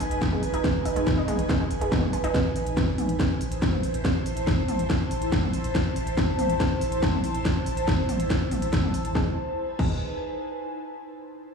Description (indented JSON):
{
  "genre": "driving peak-time techno",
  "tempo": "141 BPM",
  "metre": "4/4",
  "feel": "straight",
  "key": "unclear",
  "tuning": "A4 = 440 Hz",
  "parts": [
    { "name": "analog pluck", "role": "riff", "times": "0.0-2.3, 9.2-10.0 s", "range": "G#3 to D#4", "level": "-33 LUFS", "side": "right 1 dB", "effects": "chorus, sidechain pumping, dub echo" },
    { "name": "warm sub bass", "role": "bass", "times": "0.0-10.0 s", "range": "G#1 to A1", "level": "-33 LUFS", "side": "equal", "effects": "tube saturation, sidechain pumping, low-pass filter" },
    { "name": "techno drum kit", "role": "drums", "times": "0.0-9.9 s", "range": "crash cymbal, hi-hat, snare drum, toms", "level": "-29 LUFS", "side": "left 1 dB", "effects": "overdrive, studio reverb" },
    { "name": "ethereal airy pad", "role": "texture", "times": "0.0-10.8 s", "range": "D#4 to A5", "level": "-29 LUFS", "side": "right 1 dB", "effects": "ensemble chorus, built-in reverb, phaser, sidechain pumping" },
    { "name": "electronic kick drum", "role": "drums", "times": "0.2-9.9 s", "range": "none", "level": "-26 LUFS", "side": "equal", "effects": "overdrive, studio reverb" }
  ],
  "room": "moderate lush hall reverb, RT60 2.0 s, digital ambience",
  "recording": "played on a big sound system in a bare room, large studio reverb",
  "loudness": "-23 LUFS",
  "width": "side -5 dB against mid",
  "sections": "0.0-9.2 A section; 9.2-10.9 B section",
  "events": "none",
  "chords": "0.0 G#m; 2.3 Am; 9.2 G#m"
}